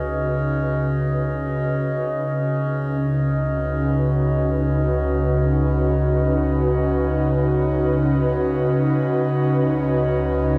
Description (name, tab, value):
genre	ambient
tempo	free time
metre	none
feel	none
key	unclear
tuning	A4 = 442 Hz
part	airy breathy pad	sustained chords	0.0-10.6 s	Db3 to Cb5	-22 LUFS	equal	chorus
part	round analog bass	bass	0.0-10.6 s	Db2	-30 LUFS	equal	none
part	hand-pumped harmonium	drone	0.0-10.6 s	Db3 to Db4	-35 LUFS	equal	none
part	glass harmonica	texture	0.0-10.6 s	Eb5	-31 LUFS	equal	none
room	wet huge ambient reverb, RT60 8.3 s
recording	dreamy mix soaked in reverb, cassette tape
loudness	-21 LUFS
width	mono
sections	0.0-10.6 A section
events	fade-in on analog synth bass 0.0-10.6; fade-out on harmonium 0.0-10.6; filter sweep on analog synth pad 0.0-10.6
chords	0.0 Cbadd9/Db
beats	free time